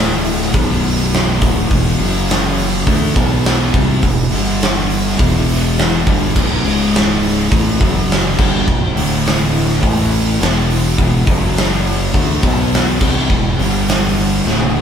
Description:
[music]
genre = stoner and doom metal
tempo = 104 BPM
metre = 4/4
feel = straight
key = B minor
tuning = A4 = 440 Hz
[part]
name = string machine, violas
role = sustained chords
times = 0.0-14.8 s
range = C#3 to B4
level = -29 LUFS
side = equal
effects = none
[part]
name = thick fuzz guitar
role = riff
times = 0.0-14.8 s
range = B1 to D4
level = -19 LUFS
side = left 6 dB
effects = distortion
[part]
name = thick fuzz guitar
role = riff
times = 0.0-14.8 s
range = B1 to D4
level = -20 LUFS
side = right 7 dB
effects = distortion
[part]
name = fuzz fingered electric bass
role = bass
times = 0.0-14.8 s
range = B0 to D2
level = -20 LUFS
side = equal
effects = overdrive
[part]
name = big rock drum kit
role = drums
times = 0.2-14.7 s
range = crash cymbal, hi-hat, kick drum, snare drum, toms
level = -16 LUFS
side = equal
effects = none
[sound]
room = moderate studio reverb, RT60 0.9 s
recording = band playing live in one room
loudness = -12 LUFS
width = side -8 dB against mid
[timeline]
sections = 0.0-14.8 A section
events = drum fill 14.4-14.8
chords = 0.0 D5; 0.5 Bm; 1.7 E5; 2.0 F#5; 2.9 E5; 3.2 B5; 3.7 E5; 4.3 G5; 5.2 E5; 6.3 B5; 6.6 C#5; 7.5 B5; 7.8 F#5; 8.4 Bm; 9.0 D5; 9.8 A5; 10.4 E5; 11.3 F#5; 12.1 E5; 12.4 B5; 13.0 E5; 13.6 G5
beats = 0.53 1.12 | 1.70 2.28 2.86 3.45 | 4.03 4.61 5.19 5.77 | 6.35 6.93 7.51 8.09 | 8.67 9.24 9.82 10.40 | 10.98 11.56 12.13 12.71 | 13.29 13.87 14.44

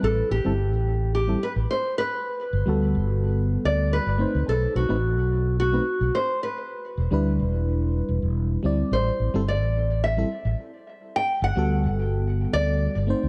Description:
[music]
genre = sunset chillout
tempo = 108 BPM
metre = 4/4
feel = straight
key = unclear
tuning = A4 = 439 Hz
[part]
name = nylon-string guitar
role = melody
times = 0.0-13.3 s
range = F#4 to G5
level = -29 LUFS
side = equal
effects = vintage 12-bit sampler grit, tape echo
[part]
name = mellow FM electric piano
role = accompaniment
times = 0.0-13.3 s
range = G3 to D5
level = -30 LUFS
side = equal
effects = chorus, low-pass filter, tape echo
[part]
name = fretless electric bass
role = bass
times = 0.0-13.3 s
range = E1 to D2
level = -26 LUFS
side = equal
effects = none
[sound]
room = light reverb, studio reverb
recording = none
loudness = -24 LUFS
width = mono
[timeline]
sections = 0.0-13.3 A section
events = filter sweep on FM electric piano 0.0-13.3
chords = 0.0 Am7; 2.3 Gmaj9; 4.5 B7b9; 6.7 Em7; 8.9 Am7; 11.1 Gmaj9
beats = | 0.03 0.59 1.14 1.70 | 2.25 2.81 3.37 3.92 | 4.48 5.03 5.59 6.14 | 6.70 7.25 7.81 8.37 | 8.92 9.48 10.03 10.59 | 11.14 11.70 12.25 12.81

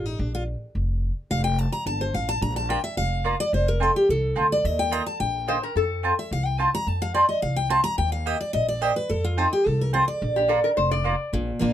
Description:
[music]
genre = bluegrass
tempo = 215 BPM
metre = 4/4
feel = straight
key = Bb major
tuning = A4 = 444 Hz
[part]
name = picked steel-string acoustic guitar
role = accompaniment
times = 0.0-11.7 s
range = Bb2 to Bb5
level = -25 LUFS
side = equal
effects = none
[part]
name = upright bass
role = bass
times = 0.0-11.7 s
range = F1 to F2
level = -26 LUFS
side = equal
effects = none
[part]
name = mandolin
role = stabs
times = 2.7-11.1 s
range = Bb3 to Bb5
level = -22 LUFS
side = right 2 dB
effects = none
[part]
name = lap resonator guitar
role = second line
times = 5.5-6.1, 10.4-11.3 s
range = G4 to D5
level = -26 LUFS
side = left 6 dB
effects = none
[sound]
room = moderate booth ambience, RT60 0.3 s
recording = none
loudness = -21 LUFS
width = side -11 dB against mid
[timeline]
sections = 0.0-11.3 A section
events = steel-string acoustic guitar solo 0.0-11.3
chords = 0.2 Bb5; 1.3 F; 2.4 Bb; 3.5 F; 4.6 Ebadd9; 5.8 F; 8.0 Eb; 9.1 F; 10.2 Bb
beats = | 0.19 0.47 0.75 1.02 | 1.30 1.58 1.86 2.14 | 2.42 2.69 2.97 3.25 | 3.53 3.81 4.09 4.37 | 4.64 4.92 5.20 5.48 | 5.76 6.04 6.32 6.59 | 6.87 7.15 7.43 7.71 | 7.99 8.27 8.54 8.82 | 9.10 9.38 9.66 9.94 | 10.22 10.50 10.77 11.05 | 11.33 11.61

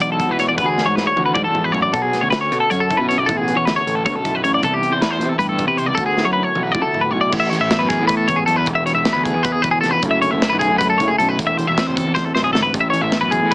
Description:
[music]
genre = math rock and midwest emo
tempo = 311 BPM (eighths)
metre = 7/8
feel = straight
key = unclear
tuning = A4 = 440 Hz
[part]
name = mellow electric guitar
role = accompaniment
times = 0.0-13.5 s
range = D2 to A4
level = -23 LUFS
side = right 1 dB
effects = none
[part]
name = twelve-string electric guitar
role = arpeggios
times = 0.0-13.5 s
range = G4 to E5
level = -17 LUFS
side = left 1 dB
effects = none
[part]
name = fuzz picked electric bass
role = bass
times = 0.0-13.5 s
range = E1 to E3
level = -23 LUFS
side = equal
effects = overdrive
[part]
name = modern studio drum kit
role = drums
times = 0.0-13.5 s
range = crash cymbal, hi-hat, kick drum, snare drum, toms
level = -24 LUFS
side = equal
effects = none
[sound]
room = light reverb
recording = heavily compressed radio sound, multiband compression, small speaker sound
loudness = -15 LUFS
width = side -23 dB against mid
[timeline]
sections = 0.0-7.3 A section; 7.3-13.5 B section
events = drum fill 0.8-1.9, 6.2-7.3, 12.2-12.7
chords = 0.0 E9; 1.9 Bm9; 4.6 Cmaj9; 6.0 D69; 7.3 Amaj9; 8.7 E7; 10.0 Dmaj9#11/F#; 11.4 Am6/E; 12.7 Amaj9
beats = 0.01 0.20 0.39 | 0.58 0.78 0.97 1.16 1.35 1.55 1.74 | 1.93 2.12 2.32 2.51 2.70 2.89 3.09 | 3.28 3.47 3.66 3.86 4.05 4.24 4.43 | 4.63 4.82 5.01 5.21 5.40 5.59 5.78 | 5.98 6.17 6.36 6.55 6.75 6.94 7.13 | 7.33 7.52 7.71 7.91 8.10 8.29 8.48 | 8.68 8.87 9.06 9.25 9.45 9.64 9.83 | 10.03 10.22 10.41 10.60 10.80 10.99 11.18 | 11.38 11.57 11.76 11.96 12.15 12.34 12.54 | 12.73 12.93 13.12 13.31 13.51

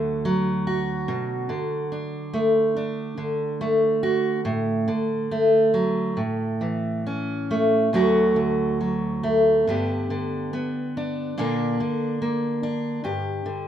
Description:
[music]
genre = folk, solo fingerstyle acoustic guitar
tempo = 71 BPM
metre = 4/4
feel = rubato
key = D major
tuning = A4 = 444 Hz
[part]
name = fingerpicked steel-string acoustic guitar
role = solo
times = 0.0-13.7 s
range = D2 to G4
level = -21 LUFS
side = equal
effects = none
[sound]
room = moderate large studio reverb, RT60 1.3 s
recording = minimal, uncompressed stereo recording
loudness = -21 LUFS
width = side -10 dB against mid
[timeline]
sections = 0.0-7.9 A section; 7.9-13.7 B section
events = none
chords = 0.0 D; 1.1 Bm7; 4.4 D/A; 6.2 A; 7.9 D; 9.7 G; 11.4 Bb; 13.0 G5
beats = 0.24 | 1.08 1.92 2.76 3.60 | 4.45 5.31 6.18 7.07 | 7.94 8.80 9.66 10.52 | 11.37 12.21 13.04

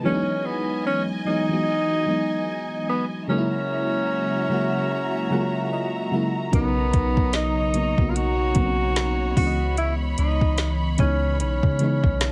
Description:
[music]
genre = contemporary R&B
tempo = 74 BPM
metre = 4/4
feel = swing 58% on 16ths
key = unclear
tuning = A4 = 440 Hz
[part]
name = FM electric piano with tremolo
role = accompaniment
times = 0.0-12.2 s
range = C#3 to A#5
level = -28 LUFS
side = equal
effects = none
[part]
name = warm studio string section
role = sustained chords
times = 0.0-12.3 s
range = E3 to B5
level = -34 LUFS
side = equal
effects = sidechain pumping
[part]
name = breathy alto saxophone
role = melody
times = 0.1-12.3 s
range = B3 to F#4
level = -28 LUFS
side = equal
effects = tape echo
[part]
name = soft 808-style bass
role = bass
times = 6.5-12.3 s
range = B1 to C#3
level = -27 LUFS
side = equal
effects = none
[part]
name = smooth R&B drum kit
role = drums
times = 6.5-12.3 s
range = hi-hat, kick drum, snare drum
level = -25 LUFS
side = equal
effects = vintage 12-bit sampler grit
[part]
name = glassy wavetable pluck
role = texture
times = 7.3-9.2 s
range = none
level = barely audible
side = none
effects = none
[sound]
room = little or no reverb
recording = none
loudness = -23 LUFS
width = mono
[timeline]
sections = 0.0-12.3 A section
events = FM electric piano fill 4.1-6.5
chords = 0.0 Emaj7; 3.3 F#7; 6.5 Bmaj9; 9.4 C#m7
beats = | 0.04 0.85 1.67 2.48 | 3.29 4.10 4.91 5.72 | 6.53 7.34 8.15 8.96 | 9.77 10.59 11.40 12.21

